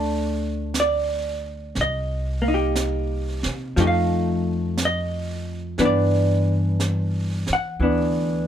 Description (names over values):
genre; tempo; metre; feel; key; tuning
jazz ballad; 60 BPM; 4/4; swing 68% on 8ths; unclear; A4 = 441 Hz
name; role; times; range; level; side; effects
vintage hollow-body jazz guitar; accompaniment; 0.0-8.5 s; E3 to A5; -22 LUFS; equal; none
upright bass; bass; 0.0-8.5 s; C2 to C3; -25 LUFS; equal; none
jazz brush drum kit; drums; 0.7-8.5 s; brushed snare drum, hi-hat, snare drum; -31 LUFS; right 3 dB; none
room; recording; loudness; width
light reverb; close, detailed microphones; -20 LUFS; side -9 dB against mid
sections
0.0-8.5 A section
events
none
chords
0.0 Bm7 (rootless); 1.8 Cm7; 3.8 F7; 5.8 G6